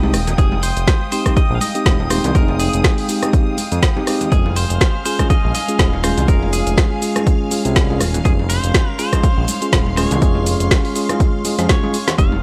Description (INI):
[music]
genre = deep house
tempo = 122 BPM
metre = 4/4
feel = swing 56% on 16ths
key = unclear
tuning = A4 = 440 Hz
[part]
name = airy breathy pad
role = sustained chords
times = 0.0-12.4 s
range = Ab3 to Eb6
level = -29 LUFS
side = equal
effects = chorus, sidechain pumping
[part]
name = mellow tine electric piano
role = stabs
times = 0.0-12.3 s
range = Ab3 to Ab4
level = -24 LUFS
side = equal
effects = sidechain pumping, analog delay
[part]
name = smooth synth bass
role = bass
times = 0.0-12.4 s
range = Eb1 to F2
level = -22 LUFS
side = equal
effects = sidechain pumping
[part]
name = congas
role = percussion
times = 0.0-12.4 s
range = none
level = -32 LUFS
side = equal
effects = none
[part]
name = string machine, violins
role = texture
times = 0.0-12.4 s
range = F5 to Eb6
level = -37 LUFS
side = equal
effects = ensemble chorus
[part]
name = deep house drum kit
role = drums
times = 0.1-12.3 s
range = cabasa, hi-hat, rim click, snare drum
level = -24 LUFS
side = equal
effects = none
[part]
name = clean electric guitar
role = melody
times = 0.4-12.4 s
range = Ab4 to F5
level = -29 LUFS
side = equal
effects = analog delay
[part]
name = electronic kick drum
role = drums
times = 0.4-12.3 s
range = none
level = -18 LUFS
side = equal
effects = none
[sound]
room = little or no reverb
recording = dry, gritty hardware recording, cassette tape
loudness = -16 LUFS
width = mono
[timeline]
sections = 0.0-12.4 A section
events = drum fill 11.7-12.2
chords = 0.0 Fm9; 4.3 Db